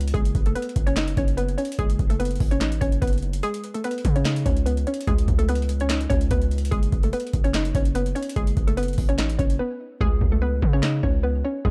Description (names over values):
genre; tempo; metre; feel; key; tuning
hip hop, trap; 146 BPM; 4/4; half-time; unclear; A4 = 440 Hz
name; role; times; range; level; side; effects
hollow square pluck; melody; 0.0-11.7 s; G#3 to D#5; -29 LUFS; equal; chorus, low-pass filter
distorted 808-style bass; bass; 0.0-11.7 s; F#1 to C#3; -26 LUFS; equal; distortion
booming analog drum machine; drums; 0.0-11.7 s; handclaps, hi-hat, kick drum, snare drum; -26 LUFS; equal; overdrive
room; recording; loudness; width
digital ambience; dark, warm production; -23 LUFS; mono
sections
0.0-11.7 A section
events
break 3.4-3.8, 9.6-10.0; hi-hats muted 10.0-11.7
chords
0.1 F#5; 3.4 C#5; 6.7 F#5; 10.0 C#5